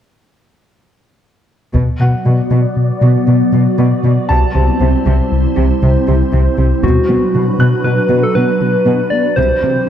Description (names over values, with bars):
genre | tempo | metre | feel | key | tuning
cinematic, hybrid orchestral and electronic film score | 118 BPM | 5/4 | straight | B phrygian | A4 = 440 Hz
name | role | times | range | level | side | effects
soft additive organ-like pad | sustained chords | 2.1-9.9 s | E3 to D5 | -17 LUFS | right 1 dB | ensemble chorus, built-in reverb, low-pass filter
smooth gliding synth bass | riff | 1.7-9.8 s | C2 to B3 | -14 LUFS | left 1 dB | low-pass filter
warm symphonic cello section | bass | 1.7-9.7 s | B2 to C3 | -17 LUFS | right 2 dB | none
taiko ensemble | drums | 1.7-2.7, 6.8-7.8 s | none | -18 LUFS | equal | none
bright concert grand piano | texture | 2.0-9.4 s | F#5 to F#6 | -24 LUFS | equal | digital delay
soft struck synth lead | melody | 6.8-9.9 s | F#4 to D5 | -15 LUFS | left 2 dB | chorus, low-pass filter
room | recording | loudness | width
light reverb | dark, warm production | -11 LUFS | side -10 dB against mid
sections
1.7-6.8 A section; 6.8-9.9 B section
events
filter sweep 1.7-6.8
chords
1.7 Bm; 4.3 C; 6.8 Bm; 9.4 C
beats
| 1.74 2.25 2.76 3.27 3.78 | 4.28 4.79 5.30 5.81 6.32 | 6.83 7.33 7.84 8.35 8.86 | 9.37 9.88